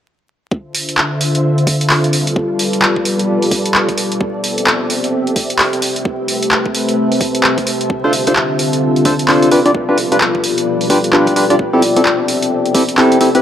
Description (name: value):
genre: UK garage, two-step garage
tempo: 130 BPM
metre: 4/4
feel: swing 61% on 16ths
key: D dorian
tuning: A4 = 436 Hz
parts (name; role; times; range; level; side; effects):
- soft string machine; sustained chords; 0.8-13.4 s; D3 to E5; -18 LUFS; equal; ensemble chorus, sidechain pumping
- electronic kick drum; drums; 0.5-12.9 s; none; -20 LUFS; equal; overdrive, high-pass filter on kick
- deep dark ambient pad; texture; 1.6-13.4 s; B3 to A5; -20 LUFS; left 1 dB; chorus, built-in reverb, sidechain pumping
- punchy analog drum machine; drums; 0.7-13.4 s; handclaps, hi-hat; -16 LUFS; equal; none
- percussive organ stab; stabs; 8.0-13.4 s; C4 to D5; -13 LUFS; equal; lush chorus, dub echo
room: moderate lush hall reverb, RT60 2.2 s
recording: dark, warm production, vinyl crackle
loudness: -12 LUFS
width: side -10 dB against mid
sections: 0.5-13.4 A section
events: fade-in on ambient pad 0.5-13.4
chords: 0.5 Dm7; 2.1 G7; 4.2 C6; 5.8 Am7; 7.9 Dm7; 9.5 G7; 11.6 C6